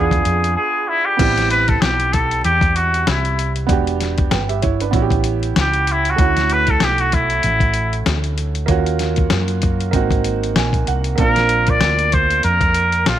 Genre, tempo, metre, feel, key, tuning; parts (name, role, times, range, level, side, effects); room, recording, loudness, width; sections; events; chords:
hip hop, jazz-hop; 96 BPM; 4/4; swing 58% on 16ths; A4 = 441 Hz
trumpet with straight mute; melody; 0.0-13.2 s; E4 to D5; -17 LUFS; left 1 dB
clear upright piano; accompaniment; 0.0-13.2 s; G3 to G#5; -23 LUFS; right 9 dB
woody fretless electric bass; bass; 0.0-13.2 s; E1 to F#2; -20 LUFS; equal; analog chorus
dusty soul sampler-style drum kit; drums; 0.1-13.2 s; crash cymbal, hi-hat, kick drum, snare drum; -19 LUFS; left 2 dB
digital ambience; 1960s-style stereo, vinyl crackle, faint mains hum; -14 LUFS; side -11 dB against mid
0.0-1.2 A section; 1.2-13.2 B section
muted trumpet solo 0.0-1.2; break 0.6-1.2; upright piano fill 10.3-11.2
0.0 E7b9; 1.2 Am9; 3.7 Em7; 4.9 A9; 6.2 Dmaj9; 8.7 D#m7; 9.9 G#9; 11.2 Bbadd9